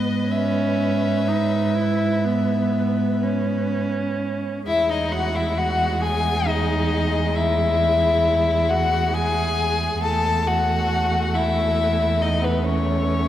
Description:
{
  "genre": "classical, slow romantic movement for string quartet",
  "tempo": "40-47 BPM (dotted quarters)",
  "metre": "12/8",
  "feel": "rubato",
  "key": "E major",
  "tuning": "A4 = 440 Hz",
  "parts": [
    { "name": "rich violin", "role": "melody", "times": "0.0-13.3 s", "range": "B4 to A5", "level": "-23 LUFS", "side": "left 4 dB", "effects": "none" },
    { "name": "rich violin", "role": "second line", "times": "0.0-13.3 s", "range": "B3 to B4", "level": "-27 LUFS", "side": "left 1 dB", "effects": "none" },
    { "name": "rich viola", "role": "accompaniment", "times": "0.0-13.3 s", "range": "G#3 to E4", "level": "-26 LUFS", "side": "equal", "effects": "none" },
    { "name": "warm cello", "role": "bass", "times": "0.0-13.3 s", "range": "E2 to G#2", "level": "-23 LUFS", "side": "right 3 dB", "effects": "none" }
  ],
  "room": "wet cathedral reverb, RT60 5.1 s",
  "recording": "in a vast, echoing space",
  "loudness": "-19 LUFS",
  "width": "side -12 dB against mid",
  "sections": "0.0-4.7 A section; 4.7-13.3 A section",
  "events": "none",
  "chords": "0.0 E/G#; 4.7 E; 10.0 A/E"
}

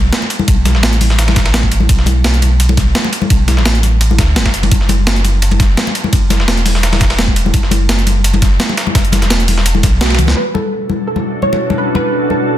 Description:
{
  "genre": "liquid drum and bass",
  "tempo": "170 BPM",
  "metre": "4/4",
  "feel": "swing 53% on 16ths",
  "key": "unclear",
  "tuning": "A4 = 440 Hz",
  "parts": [
    { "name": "warm sub bass", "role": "bass", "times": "0.0-10.3 s", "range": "E1 to D2", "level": "-13 LUFS", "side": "equal", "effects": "tube saturation" },
    { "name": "breakbeat sampler-style drum kit", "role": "drums", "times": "0.1-10.3 s", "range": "hi-hat, snare drum, toms", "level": "-18 LUFS", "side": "equal", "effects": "low-pass filter on hats, studio reverb, low-pass filter on snare, low-pass filter on cymbals, low-pass filter on toms" },
    { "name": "dusty soul sampler-style drum kit", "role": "drums", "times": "0.1-10.3 s", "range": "hi-hat, ride cymbal, snare drum", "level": "-19 LUFS", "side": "right 1 dB", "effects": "high-pass filter on cymbals, studio reverb, high-pass filter on snare, high-pass filter on hats, high-pass filter on room" },
    { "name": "congas", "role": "percussion", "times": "0.1-12.4 s", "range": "none", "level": "-19 LUFS", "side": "left 5 dB", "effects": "none" },
    { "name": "electronic kick drum", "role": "drums", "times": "0.5-9.9 s", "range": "none", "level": "-13 LUFS", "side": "equal", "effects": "overdrive, studio reverb" },
    { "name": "soft round pluck", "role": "melody", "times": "10.0-12.6 s", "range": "F#4 to C#5", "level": "-18 LUFS", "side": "right 3 dB", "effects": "wide subtle chorus, ping-pong delay" },
    { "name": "glassy FM pad", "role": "sustained chords", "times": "10.9-12.6 s", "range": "B2 to A4", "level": "-17 LUFS", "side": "equal", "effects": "ensemble chorus, built-in reverb" }
  ],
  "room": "light reverb",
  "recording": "dense, heavily limited modern master",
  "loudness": "-10 LUFS",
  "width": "side -12 dB against mid",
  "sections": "0.0-10.4 A section; 10.4-12.6 B section",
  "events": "kick drops out 10.0-10.4; band accent 10.0; drum fill 10.2",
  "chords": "0.0 B7(no3); 4.7 F#5; 10.4 Bm11"
}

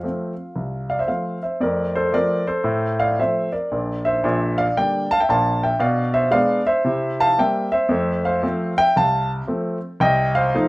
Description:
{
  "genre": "jazz, stride piano",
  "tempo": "114 BPM",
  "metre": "4/4",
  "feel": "swing 65% on 8ths",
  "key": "F major",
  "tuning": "A4 = 442 Hz",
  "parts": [
    { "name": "warm grand piano", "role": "solo", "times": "0.0-10.7 s", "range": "Bb1 to A5", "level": "-18 LUFS", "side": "equal", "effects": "none" }
  ],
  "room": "wet studio reverb, RT60 0.6 s",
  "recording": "rough home demo mix",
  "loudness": "-18 LUFS",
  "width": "side -21 dB against mid",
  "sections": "0.0-1.6 A section; 1.6-10.7 B section",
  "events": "none",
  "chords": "0.0 F; 2.7 F/A; 3.7 Gm/Bb; 5.8 E7b9b13/B; 6.9 C7; 7.9 F; 10.0 F7/C"
}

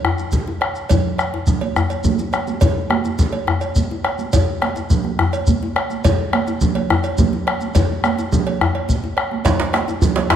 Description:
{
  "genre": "west african traditional, West African drum ensemble",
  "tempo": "140 BPM (dotted quarters)",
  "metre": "12/8",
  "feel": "straight",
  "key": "none",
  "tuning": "none",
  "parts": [
    { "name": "bombo", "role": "percussion", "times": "0.0-10.4 s", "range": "none", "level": "-19 LUFS", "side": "left 2 dB", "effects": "none" },
    { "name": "djembe", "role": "percussion", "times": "0.0-10.4 s", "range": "none", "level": "-23 LUFS", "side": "left 4 dB", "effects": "none" },
    { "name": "congas", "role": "percussion", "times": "0.2-10.3 s", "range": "none", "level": "-23 LUFS", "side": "right 6 dB", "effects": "none" },
    { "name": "shekere", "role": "percussion", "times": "0.2-10.2 s", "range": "none", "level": "-28 LUFS", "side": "right 2 dB", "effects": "none" },
    { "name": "cowbell", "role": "percussion", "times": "0.6-10.3 s", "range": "none", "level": "-26 LUFS", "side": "right 5 dB", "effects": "none" },
    { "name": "djembe", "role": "percussion", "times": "9.5-10.4 s", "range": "none", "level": "-20 LUFS", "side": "right 6 dB", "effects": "none" }
  ],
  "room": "wet recital hall reverb, RT60 1.6 s",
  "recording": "none",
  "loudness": "-16 LUFS",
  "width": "side -9 dB against mid",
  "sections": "0.0-9.5 A section",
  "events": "none",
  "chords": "none"
}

